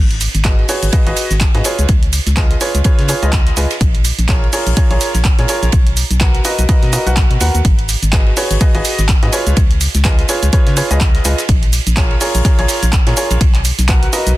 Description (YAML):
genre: piano house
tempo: 125 BPM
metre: 4/4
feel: swing 57% on 16ths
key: unclear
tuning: A4 = 441 Hz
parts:
  - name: organ-like FM bass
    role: bass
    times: 0.0-14.3 s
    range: G#1 to C#3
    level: -15 LUFS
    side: equal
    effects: sidechain pumping
  - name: punchy analog drum machine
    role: drums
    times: 0.1-14.3 s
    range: handclaps, hi-hat, shaker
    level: -20 LUFS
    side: right 2 dB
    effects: none
  - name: damped 70s drum kit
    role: drums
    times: 0.2-14.3 s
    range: hi-hat, ride cymbal, snare drum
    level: -27 LUFS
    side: right 4 dB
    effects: high-pass filter on cymbals, high-pass filter on hats, high-pass filter on snare, high-pass filter on room
  - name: clear upright piano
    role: riff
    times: 0.4-14.3 s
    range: E#4 to F#5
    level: -20 LUFS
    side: right 1 dB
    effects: sidechain pumping, dub echo
  - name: electronic kick drum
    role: drums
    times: 0.4-14.0 s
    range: none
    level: -13 LUFS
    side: equal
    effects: overdrive
room: small room ambience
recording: dense, heavily limited modern master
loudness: -11 LUFS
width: side -17 dB against mid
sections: 0.0-14.4 A section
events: none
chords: 0.0 G#m7; 1.6 C#7; 3.8 A#m7; 5.7 Bmaj7; 7.6 G#m7; 9.3 C#7; 11.5 A#m7; 13.4 Bmaj7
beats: 0.45 0.93 1.41 | 1.89 2.37 2.85 3.33 | 3.81 4.29 4.77 5.25 | 5.73 6.21 6.69 7.17 | 7.65 8.13 8.61 9.09 | 9.57 10.05 10.53 11.01 | 11.49 11.97 12.45 12.93 | 13.41 13.89